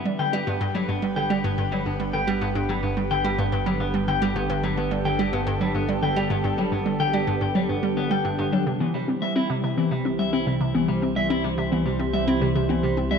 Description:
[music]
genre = ambient, sequencer-driven space music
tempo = 108 BPM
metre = 4/4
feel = straight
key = G major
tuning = A4 = 440 Hz
[part]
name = lush unison pad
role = sustained chords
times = 0.0-13.2 s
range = D3 to C5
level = -27 LUFS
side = right 1 dB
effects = chorus
[part]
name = clean electric guitar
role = arpeggios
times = 0.0-13.2 s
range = E3 to G5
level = -27 LUFS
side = moving between left 7 dB and equal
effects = auto-pan, ping-pong delay
[part]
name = analog drone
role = bass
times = 1.1-13.2 s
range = G1 to C2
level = -34 LUFS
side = right 1 dB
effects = chorus
[part]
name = hollow square pluck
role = riff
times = 0.1-13.2 s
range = G2 to C4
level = -25 LUFS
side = right 1 dB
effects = chorus, ping-pong delay
[sound]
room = moderate concert hall reverb, RT60 2.1 s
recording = none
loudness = -21 LUFS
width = side -6 dB against mid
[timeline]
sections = 0.0-13.2 A section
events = fade-in on analog synth pad 0.0-13.2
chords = 0.0 G; 8.7 C

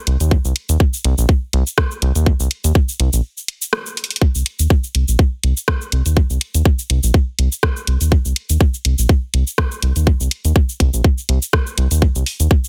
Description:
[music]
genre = minimal techno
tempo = 123 BPM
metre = 4/4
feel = swing 55% on 16ths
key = unclear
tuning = A4 = 440 Hz
[part]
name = round analog bass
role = bass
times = 0.1-12.5 s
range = Bb1 to Eb2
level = -18 LUFS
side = equal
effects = sidechain pumping
[part]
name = garage drum kit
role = drums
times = 0.1-12.7 s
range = cabasa, hi-hat, rim click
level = -24 LUFS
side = equal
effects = none
[part]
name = electronic kick drum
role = drums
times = 0.3-12.6 s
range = none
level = -16 LUFS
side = equal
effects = none
[sound]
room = little or no reverb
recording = none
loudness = -17 LUFS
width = mono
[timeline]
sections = 0.0-12.7 A section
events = break 3.2-4.2; drum fill 4.0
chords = none

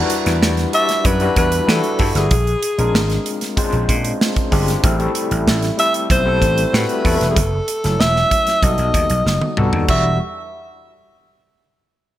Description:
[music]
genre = polished 1980s jazz-funk pop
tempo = 95 BPM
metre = 4/4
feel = straight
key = E minor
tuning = A4 = 440 Hz
[part]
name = overdriven tine electric piano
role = accompaniment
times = 0.0-10.2 s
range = E3 to D5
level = -21 LUFS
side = left 2 dB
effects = fast tremolo, lush chorus
[part]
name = modern studio drum kit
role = drums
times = 0.1-10.0 s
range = crash cymbal, hi-hat, kick drum, snare drum, toms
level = -19 LUFS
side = right 1 dB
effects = none
[part]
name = vintage slap bass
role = bass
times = 0.3-10.2 s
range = E1 to E3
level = -19 LUFS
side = equal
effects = none
[part]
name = warm alto saxophone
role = melody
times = 0.7-10.2 s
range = G#4 to E5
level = -19 LUFS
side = equal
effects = none
[sound]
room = moderate plate reverb, RT60 1.8 s, small room reverb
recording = bright 1980s-style digital production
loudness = -14 LUFS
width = side -13 dB against mid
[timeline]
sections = 0.0-9.9 A section; 9.9-12.2 B section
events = drum fill 9.3-9.9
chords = 0.0 Em9; 2.3 A#9; 4.8 Am7; 7.4 F#m7; 8.6 B7b13; 9.9 Em9

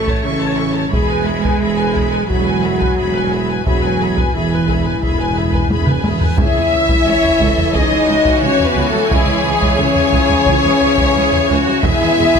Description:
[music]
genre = cinematic, epic orchestral film score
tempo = 88 BPM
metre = 4/4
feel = straight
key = unclear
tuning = A4 = 440 Hz
[part]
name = warm studio violin section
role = melody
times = 0.0-12.4 s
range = G#4 to C#6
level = -23 LUFS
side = left 6 dB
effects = none
[part]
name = rich studio violin section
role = second line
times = 0.0-12.4 s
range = G#4 to G#5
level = -23 LUFS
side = left 1 dB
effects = none
[part]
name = rich symphonic viola section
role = accompaniment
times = 0.0-12.4 s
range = E4 to E5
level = -22 LUFS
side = right 1 dB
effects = none
[part]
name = warm French horn section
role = sustained chords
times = 0.0-12.4 s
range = G#3 to A4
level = -19 LUFS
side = left 5 dB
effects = none
[part]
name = clear symphonic double bass section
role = bass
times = 0.0-12.2 s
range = E1 to C#2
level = -25 LUFS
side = right 5 dB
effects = none
[part]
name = mellow tuba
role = bass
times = 0.0-12.3 s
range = E1 to C#2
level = -25 LUFS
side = right 6 dB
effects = none
[part]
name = rich symphonic cello section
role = bass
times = 0.0-12.4 s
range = C#2 to A3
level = -24 LUFS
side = right 5 dB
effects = none
[part]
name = solo taiko drums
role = drums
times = 0.1-12.4 s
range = none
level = -19 LUFS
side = equal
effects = none
[part]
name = timpani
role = percussion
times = 0.9-6.3, 11.9-12.4 s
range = E2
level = -26 LUFS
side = left 1 dB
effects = none
[part]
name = reverse cymbal and sub drop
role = sound effects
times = 6.1-9.1 s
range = none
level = -29 LUFS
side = equal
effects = none
[part]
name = mellow flute section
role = second line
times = 6.4-12.4 s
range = G#4 to E5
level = -21 LUFS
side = left 1 dB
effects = none
[part]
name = bright trombone section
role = sustained chords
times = 6.4-12.4 s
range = C#3 to G#3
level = -24 LUFS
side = right 6 dB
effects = none
[part]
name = rich symphonic string section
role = sustained chords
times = 6.4-12.4 s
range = E3 to G#5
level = -22 LUFS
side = left 2 dB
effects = none
[sound]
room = light reverb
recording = close, detailed microphones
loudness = -12 LUFS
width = side -6 dB against mid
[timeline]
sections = 0.0-6.4 A section; 6.4-12.4 A section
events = timpani fill 0.9-6.4; drum fill 5.7-6.4; reverse cymbal 6.1; impact 6.4-9.1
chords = 0.0 A; 0.9 E; 6.4 C#m; 11.8 E

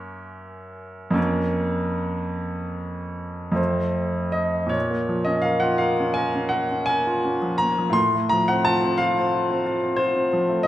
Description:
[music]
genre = classical, romantic nocturne for solo piano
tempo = 49-61 BPM (dotted quarters)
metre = 9/8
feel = rubato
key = Bb minor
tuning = A4 = 445 Hz
[part]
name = clear baby grand piano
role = solo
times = 0.0-10.7 s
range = F2 to C6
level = -21 LUFS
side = equal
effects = none
[sound]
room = moderate recital hall reverb, RT60 1.6 s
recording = none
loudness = -20 LUFS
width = side -13 dB against mid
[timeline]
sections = 0.0-4.7 A section; 4.7-10.7 B section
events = none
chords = 0.0 Gb; 1.2 Bbm/F; 3.6 F; 4.7 Bbm; 8.0 F/A

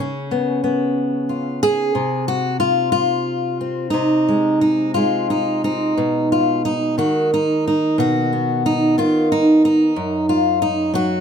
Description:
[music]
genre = folk, solo fingerstyle acoustic guitar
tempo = 60 BPM (dotted quarters)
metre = 6/8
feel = rubato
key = unclear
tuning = A4 = 439 Hz
[part]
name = fingerpicked steel-string acoustic guitar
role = solo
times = 0.0-11.2 s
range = Gb2 to Ab4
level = -16 LUFS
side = equal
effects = none
[sound]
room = light reverb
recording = close, detailed microphones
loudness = -16 LUFS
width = side -7 dB against mid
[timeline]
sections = 0.0-6.0 A section; 6.0-11.2 B section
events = none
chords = 0.0 Db7; 2.0 Ab6/C; 6.0 B6; 10.0 N.C.

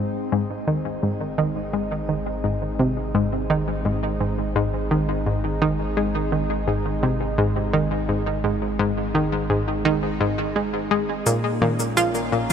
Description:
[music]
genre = ambient, sequencer-driven space music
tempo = 85 BPM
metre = 4/4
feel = straight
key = unclear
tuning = A4 = 438 Hz
[part]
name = sweeping resonant pad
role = sustained chords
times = 0.0-12.5 s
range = Bb2 to F4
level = -28 LUFS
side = right 1 dB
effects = chorus, shimmer reverb
[part]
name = analog pluck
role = riff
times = 0.0-12.4 s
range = Ab2 to F4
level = -22 LUFS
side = equal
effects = chorus, tape echo, shimmer reverb
[part]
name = warm sub bass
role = bass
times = 0.0-12.5 s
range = Ab1 to Bb1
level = -31 LUFS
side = equal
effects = none
[part]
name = electronic cabasa and toms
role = percussion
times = 11.3-12.5 s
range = none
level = -28 LUFS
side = left 2 dB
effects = overdrive, tape echo
[sound]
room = moderate huge ambient reverb, RT60 7.5 s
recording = none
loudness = -21 LUFS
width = side -8 dB against mid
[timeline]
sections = 0.0-12.5 A section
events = fade-in on analog synth pad 0.0-12.5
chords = 0.0 Ab; 11.3 Bbm

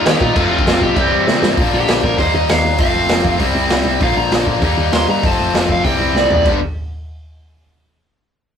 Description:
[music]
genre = punk rock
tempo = 196 BPM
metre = 4/4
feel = straight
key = unclear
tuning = A4 = 442 Hz
[part]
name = overdriven semi-hollow guitar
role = melody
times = 0.0-6.5 s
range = F4 to C6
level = -19 LUFS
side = right 1 dB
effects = none
[part]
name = distorted electric guitar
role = riff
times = 0.0-6.6 s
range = G2 to F4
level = -18 LUFS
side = left 6 dB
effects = overdrive
[part]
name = tight distorted guitar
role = riff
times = 0.0-6.6 s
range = F2 to Eb4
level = -21 LUFS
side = right 5 dB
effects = distortion
[part]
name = woody FM bass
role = bass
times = 0.1-6.6 s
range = F1 to Eb3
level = -21 LUFS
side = right 1 dB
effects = none
[part]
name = raw garage drum kit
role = drums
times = 0.1-6.5 s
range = crash cymbal, hi-hat, kick drum, snare drum, toms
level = -18 LUFS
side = equal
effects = none
[sound]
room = light reverb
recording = rough rehearsal-room recording, lossy compression artefacts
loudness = -12 LUFS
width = side -8 dB against mid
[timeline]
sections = 0.0-1.6 A section; 1.6-6.5 B section; 6.5-7.7 C section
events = drum fill 1.3-1.6, 6.2-6.5; overdriven electric guitar solo 1.6-6.5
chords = 0.4 F; 1.0 C; 1.6 Bb; 2.2 Eb; 2.8 F; 3.4 C; 4.0 Bb; 4.6 Eb; 5.2 F; 5.8 C; 6.5 G5

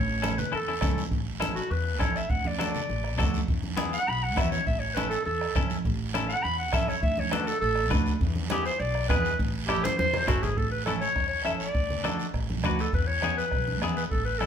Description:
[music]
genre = latin, cumbia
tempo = 203 BPM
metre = 4/4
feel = straight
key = A major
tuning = A4 = 440 Hz
[part]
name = clear clarinet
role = melody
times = 0.0-14.5 s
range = F#4 to B5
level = -29 LUFS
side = equal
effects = none
[part]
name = upright bass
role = bass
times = 0.0-14.5 s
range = F#1 to E2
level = -31 LUFS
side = equal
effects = none
[part]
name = semi-hollow electric guitar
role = accompaniment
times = 0.2-14.5 s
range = B3 to B4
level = -33 LUFS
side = left 5 dB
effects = none
[part]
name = bombo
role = percussion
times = 0.2-14.5 s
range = none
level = -31 LUFS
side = right 1 dB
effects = none
[part]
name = congas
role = percussion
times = 0.2-14.5 s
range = none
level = -34 LUFS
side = right 2 dB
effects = none
[part]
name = guiro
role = percussion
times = 0.2-14.5 s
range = none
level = -40 LUFS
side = right 6 dB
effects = none
[sound]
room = moderate large studio reverb, RT60 1.1 s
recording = band playing live in one room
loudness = -25 LUFS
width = side -8 dB against mid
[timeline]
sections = 0.0-1.1 A section; 1.1-10.6 B section; 10.6-14.5 C section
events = clarinet solo 1.1-10.6; drum fill 9.7-10.6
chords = 0.0 A; 2.3 D; 3.5 E; 4.7 A; 7.0 D; 8.2 E7; 9.4 A; 11.8 D; 12.9 E

